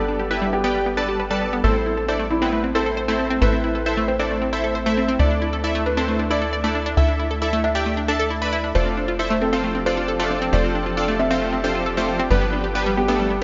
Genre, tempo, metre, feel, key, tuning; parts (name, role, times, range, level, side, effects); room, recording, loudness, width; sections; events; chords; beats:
trance; 135 BPM; 4/4; straight; A minor; A4 = 440 Hz
supersaw stab; melody; 0.0-13.3 s; A3 to B5; -26 LUFS; equal; low-pass filter, digital delay
felt-muted upright piano; second line; 0.0-13.4 s; E4 to E5; -28 LUFS; equal; dub echo
shimmering ambient pad; sustained chords; 0.0-13.4 s; F3 to A4; -31 LUFS; equal; chorus, built-in reverb
analog pluck; arpeggios; 0.0-13.4 s; G3 to D5; -27 LUFS; equal; chorus
tight sequencer bass; bass; 0.0-13.4 s; F1 to D2; -28 LUFS; equal
moderate lush hall reverb, RT60 2.6 s; nothing above 7.5 kHz; -21 LUFS; mono
0.0-13.4 A section
filter sweep on ambient pad 0.0-13.4
0.0 G; 1.6 Am; 5.2 Dsus2; 8.8 F6; 12.3 G
0.31 0.75 1.20 | 1.64 2.08 2.53 2.97 | 3.42 3.86 4.31 4.75 | 5.20 5.64 6.08 6.53 | 6.97 7.42 7.86 8.31 | 8.75 9.20 9.64 10.08 | 10.53 10.97 11.42 11.86 | 12.31 12.75 13.20